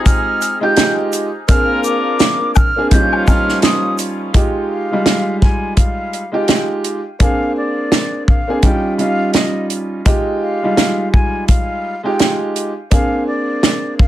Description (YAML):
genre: hip hop, boom-bap hip-hop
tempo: 84 BPM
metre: 4/4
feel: swing 60% on 16ths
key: F minor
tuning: A4 = 440 Hz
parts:
  - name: breathy concert flute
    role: melody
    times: 0.0-14.1 s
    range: D5 to G6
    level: -21 LUFS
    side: equal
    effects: high-pass filter, low-pass filter, tape echo
  - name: warm upright piano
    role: accompaniment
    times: 0.0-14.1 s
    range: G3 to Ab4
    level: -18 LUFS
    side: right 1 dB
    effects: cassette tape, high-pass filter, low-pass filter
  - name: clear horn section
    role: stabs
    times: 0.0-4.0 s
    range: F3 to Bb4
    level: -25 LUFS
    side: left 5 dB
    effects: high-pass filter, low-pass filter, tape echo
  - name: warm soul drum kit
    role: drums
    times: 0.1-14.1 s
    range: hi-hat, kick drum, shaker, snare drum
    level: -13 LUFS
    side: equal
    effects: none
  - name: maracas and woodblock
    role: percussion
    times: 0.1-4.2 s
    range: none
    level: -24 LUFS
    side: left 10 dB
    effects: none
room: light reverb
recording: none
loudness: -13 LUFS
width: side -13 dB against mid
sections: 0.0-4.3 A section; 4.3-14.1 B section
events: none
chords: 0.0 Fm9; 1.5 Bb9; 2.9 Eb9; 4.3 Fm9; 7.2 Bb9; 8.6 Eb9; 10.1 Fm9; 12.9 Bb9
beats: 0.06 0.77 | 1.49 2.20 2.92 3.63 | 4.34 5.06 5.77 6.49 | 7.20 7.92 8.63 9.35 | 10.06 10.77 11.49 12.20 | 12.92 13.63